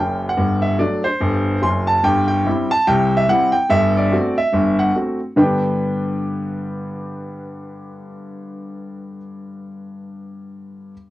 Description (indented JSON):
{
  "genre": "jazz, stride piano",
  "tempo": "144 BPM",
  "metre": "4/4",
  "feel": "swing 60% on 8ths",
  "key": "G major",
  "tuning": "A4 = 440 Hz",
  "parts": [
    { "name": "bright grand piano", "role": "solo", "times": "0.0-10.9 s", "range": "F#1 to C6", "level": "-17 LUFS", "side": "equal", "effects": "cassette tape" }
  ],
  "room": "moderate booth ambience, RT60 0.2 s",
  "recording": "home recording on cassette",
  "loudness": "-16 LUFS",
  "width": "side -16 dB against mid",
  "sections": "0.0-5.4 A section; 5.4-8.7 B section",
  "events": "none",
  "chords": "0.4 D7/G; 2.0 C/G; 3.7 D7/G; 5.4 G"
}